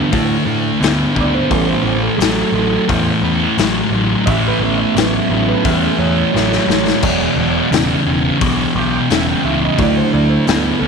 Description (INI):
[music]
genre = blues rock power trio and southern rock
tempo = 87 BPM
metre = 4/4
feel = straight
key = A mixolydian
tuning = A4 = 441 Hz
[part]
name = percussive tonewheel organ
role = sustained chords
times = 0.0-10.9 s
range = E3 to G5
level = -20 LUFS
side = right 11 dB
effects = slow rotary speaker
[part]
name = thick fuzz guitar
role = riff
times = 0.0-10.9 s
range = E2 to B3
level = -15 LUFS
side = equal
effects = distortion
[part]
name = growling picked electric bass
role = bass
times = 0.1-10.9 s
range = E1 to A2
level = -21 LUFS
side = equal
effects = overdrive
[part]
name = raw garage drum kit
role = drums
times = 0.1-10.6 s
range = crash cymbal, hi-hat, kick drum, snare drum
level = -20 LUFS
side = left 6 dB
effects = none
[sound]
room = light reverb, studio ambience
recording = 1960s-style stereo with parts hard left and right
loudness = -13 LUFS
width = side -5 dB against mid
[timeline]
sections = 0.0-10.9 A section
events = tonewheel organ solo 0.0-10.9; drum fill 6.3-7.0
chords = 0.0 D5; 1.5 A7; 7.0 E7; 9.8 D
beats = 0.14 0.82 | 1.51 2.20 2.89 3.58 | 4.27 4.96 5.65 6.34 | 7.03 7.72 8.41 9.10 | 9.78 10.47